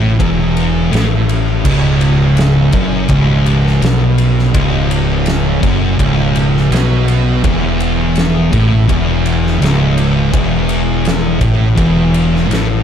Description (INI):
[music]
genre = stoner and doom metal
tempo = 83 BPM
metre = 4/4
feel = straight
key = unclear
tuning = A4 = 439 Hz
[part]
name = thick fuzz guitar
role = riff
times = 0.0-12.8 s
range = C#2 to B2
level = -15 LUFS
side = left 7 dB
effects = distortion
[part]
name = thick fuzz guitar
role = riff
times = 0.0-12.8 s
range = C#2 to B2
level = -15 LUFS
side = right 8 dB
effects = distortion
[part]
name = fuzz fingered electric bass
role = bass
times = 0.0-12.8 s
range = C#1 to B1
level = -17 LUFS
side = equal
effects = overdrive
[part]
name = oversized low-tuned drum kit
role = drums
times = 0.2-12.7 s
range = crash cymbal, kick drum, ride cymbal, snare drum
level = -18 LUFS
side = equal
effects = none
[sound]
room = small room ambience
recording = dark, warm production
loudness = -10 LUFS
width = side -8 dB against mid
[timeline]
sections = 0.0-12.8 A section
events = none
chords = 0.0 A5; 1.6 C#7sus4; 7.4 A